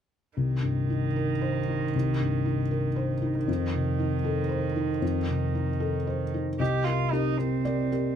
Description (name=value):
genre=neoclassical piano and strings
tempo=116 BPM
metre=3/4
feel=rubato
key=C dorian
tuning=A4 = 440 Hz
part: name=warm cello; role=second line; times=0.4-8.2 s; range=Eb3 to G4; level=-31 LUFS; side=right 9 dB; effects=none
part: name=felt-muted upright piano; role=accompaniment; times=0.4-8.2 s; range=C2 to Eb5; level=-26 LUFS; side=left 2 dB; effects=none
room=light reverb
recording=none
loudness=-25 LUFS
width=side -9 dB against mid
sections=0.4-6.6 A section; 6.6-8.2 B section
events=none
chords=0.4 Cm7; 3.5 F7; 6.6 Cm7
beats=| 0.38 0.90 1.43 | 1.94 2.45 2.96 | 3.48 3.99 4.50 | 5.02 5.54 6.07 | 6.60 7.12 7.64